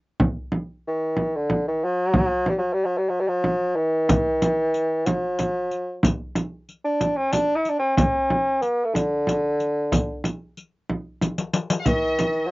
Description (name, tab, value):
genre	Arabic maqam ensemble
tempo	93 BPM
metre	3/4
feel	straight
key	D maqam huzam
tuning	A4 = 440 Hz
part	frame drum	percussion	0.2-12.3 s	none	-23 LUFS	right 1 dB	none
part	warm bassoon	melody	0.9-12.5 s	D3 to E4-46c	-22 LUFS	equal	none
part	riq	percussion	4.1-12.3 s	none	-27 LUFS	left 3 dB	none
part	warm studio violin section	second line	11.8-12.5 s	E5-50c to F#5-50c	-28 LUFS	left 1 dB	cassette tape
room	light reverb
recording	home recording on cassette, nothing above 7.6 kHz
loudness	-21 LUFS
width	side -21 dB against mid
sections	0.0-11.9 A section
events	drum fill 11.2-11.9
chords	none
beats	| 0.21 0.85 1.50 | 2.15 2.80 3.45 | 4.10 4.74 5.39 | 6.04 6.69 7.34 | 7.98 8.63 9.28 | 9.93 10.57 11.22 | 11.87